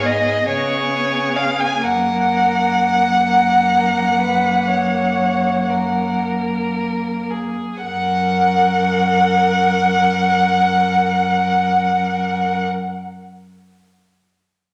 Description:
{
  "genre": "classical, slow romantic movement for string quartet",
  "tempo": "35-47 BPM (dotted quarters)",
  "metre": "12/8",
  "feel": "rubato",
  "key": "F# major",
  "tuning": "A4 = 440 Hz",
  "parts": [
    { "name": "rich violin", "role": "melody", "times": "0.0-12.6 s", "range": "G#4 to F#5", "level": "-27 LUFS", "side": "equal", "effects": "none" },
    { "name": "rich violin", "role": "second line", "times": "0.0-12.6 s", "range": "C#5 to G#5", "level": "-19 LUFS", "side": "equal", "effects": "none" },
    { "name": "rich viola", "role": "accompaniment", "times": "0.0-12.6 s", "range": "A#3 to A#4", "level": "-27 LUFS", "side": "equal", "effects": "none" },
    { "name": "rich cello", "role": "bass", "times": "0.0-12.6 s", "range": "F#2 to C#3", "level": "-26 LUFS", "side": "equal", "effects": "none" }
  ],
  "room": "wet recital hall reverb, RT60 1.5 s",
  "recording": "none",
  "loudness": "-17 LUFS",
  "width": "mono",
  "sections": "0.0-7.8 A section; 7.8-13.9 B section",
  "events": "slowing down 0.0-7.8",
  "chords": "0.5 C#5; 1.8 F#"
}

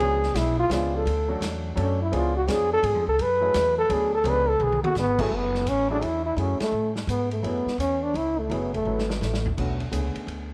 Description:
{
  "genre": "jazz, small-group swing and bop",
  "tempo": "169 BPM",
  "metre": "3/4",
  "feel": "swing 64% on 8ths",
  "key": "F# minor",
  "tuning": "A4 = 440 Hz",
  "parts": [
    { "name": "mellow trombone", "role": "melody", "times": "0.0-9.5 s", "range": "A3 to B4", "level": "-26 LUFS", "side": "equal", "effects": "tape echo" },
    { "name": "warm baby grand piano", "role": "accompaniment", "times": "0.0-10.5 s", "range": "D3 to B4", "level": "-34 LUFS", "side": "equal", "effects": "none" },
    { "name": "upright bass", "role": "bass", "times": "0.0-10.5 s", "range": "F#1 to A2", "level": "-31 LUFS", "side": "equal", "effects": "transformer saturation" },
    { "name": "vintage drum kit", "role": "drums", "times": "0.0-10.4 s", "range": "crash cymbal, hi-hat, kick drum, ride cymbal, snare drum, toms", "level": "-37 LUFS", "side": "equal", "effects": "none" }
  ],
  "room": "moderate plate reverb, RT60 1.4 s, small room reverb",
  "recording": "none",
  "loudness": "-25 LUFS",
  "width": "mono",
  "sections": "0.0-5.3 A section; 5.3-10.5 B section",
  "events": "trombone solo 0.0-5.3; drum fill 4.6-5.0, 8.9-9.6; band accent 6.6",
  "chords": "0.0 C#7b9; 1.1 Dmaj7; 2.1 C#7b9; 3.2 F#m9; 3.9 Bm9; 4.3 C#7b9; 5.3 F#m9; 9.6 Bm9"
}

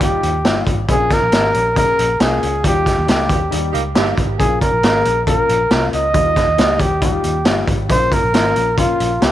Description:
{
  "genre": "uptempo 1960s-style soul",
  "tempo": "137 BPM",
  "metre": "4/4",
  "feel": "straight",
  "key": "Bb dorian",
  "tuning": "A4 = 440 Hz",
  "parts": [
    { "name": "mellow trumpet", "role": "melody", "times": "0.0-9.3 s", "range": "F4 to Eb5", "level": "-17 LUFS", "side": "right 1 dB", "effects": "tape echo" },
    { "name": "warm baby grand piano", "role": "accompaniment", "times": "0.0-9.3 s", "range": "F3 to Ab4", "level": "-23 LUFS", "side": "left 13 dB", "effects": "none" },
    { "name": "vintage muted fingered electric bass", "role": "bass", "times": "0.0-9.3 s", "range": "G1 to Eb2", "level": "-22 LUFS", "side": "equal", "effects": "none" },
    { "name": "raw garage drum kit", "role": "drums", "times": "0.0-9.3 s", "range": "hi-hat, kick drum, snare drum", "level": "-17 LUFS", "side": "right 1 dB", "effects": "none" },
    { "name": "warm saxophone section", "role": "second line", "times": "3.3-4.4 s", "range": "Bb3 to G4", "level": "-24 LUFS", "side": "right 14 dB", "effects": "none" }
  ],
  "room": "little or no reverb",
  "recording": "1960s-style stereo with parts hard left and right",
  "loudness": "-13 LUFS",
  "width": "side -12 dB against mid",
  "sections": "0.0-9.3 A section",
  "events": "band accent 2.6-4.4",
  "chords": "0.0 Ebadd9; 0.9 Bbm; 2.6 Ebadd9; 4.4 Bbm; 6.1 Ebadd9; 7.9 Bbm"
}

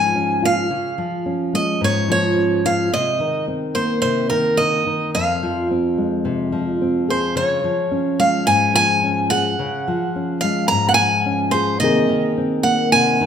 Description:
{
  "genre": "acoustic folk duo or small band",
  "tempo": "108 BPM",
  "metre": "4/4",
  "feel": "straight",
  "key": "Db major",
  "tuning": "A4 = 439 Hz",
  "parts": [
    { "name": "picked steel-string acoustic guitar", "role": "melody", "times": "0.0-13.3 s", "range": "Bb4 to Bb5", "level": "-18 LUFS", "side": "right 1 dB", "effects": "none" },
    { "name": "nylon-string guitar", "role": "accompaniment", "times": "0.0-13.3 s", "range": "F2 to Ab4", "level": "-20 LUFS", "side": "left 1 dB", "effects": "none" }
  ],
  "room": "wet large studio reverb, RT60 1.3 s",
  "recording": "minimal, uncompressed stereo recording",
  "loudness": "-16 LUFS",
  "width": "side -8 dB against mid",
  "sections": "0.0-13.3 A section",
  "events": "none",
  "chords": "0.0 Db; 2.9 Abadd9/C; 5.1 Fm; 7.4 Db; 11.8 Abadd9/C"
}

